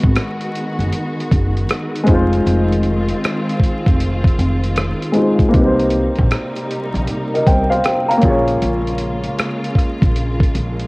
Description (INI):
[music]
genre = lo-fi hip hop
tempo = 78 BPM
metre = 4/4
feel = swing 64% on 16ths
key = unclear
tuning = A4 = 440 Hz
[part]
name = dark upright piano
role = accompaniment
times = 0.0-10.9 s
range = Ab3 to Bb5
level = -18 LUFS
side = left 1 dB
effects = none
[part]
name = dark studio string section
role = sustained chords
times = 0.0-10.9 s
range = C3 to Gb4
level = -24 LUFS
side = equal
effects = none
[part]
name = upright bass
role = bass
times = 0.0-10.9 s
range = F1 to C2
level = -18 LUFS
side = equal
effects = none
[part]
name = dusty soul sampler-style drum kit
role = drums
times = 0.0-10.9 s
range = hi-hat, kick drum, rim click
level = -17 LUFS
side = equal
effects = cassette tape
[sound]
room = light reverb, small room ambience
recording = home recording on cassette, vinyl crackle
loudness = -14 LUFS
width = side -24 dB against mid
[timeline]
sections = 0.0-10.9 A section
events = none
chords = 0.0 Abm7; 2.1 Fm7; 5.5 Cm7; 8.2 Bbm7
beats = 0.16 0.93 1.70 | 2.46 3.23 4.00 4.77 | 5.54 6.31 7.08 7.85 | 8.62 9.39 10.16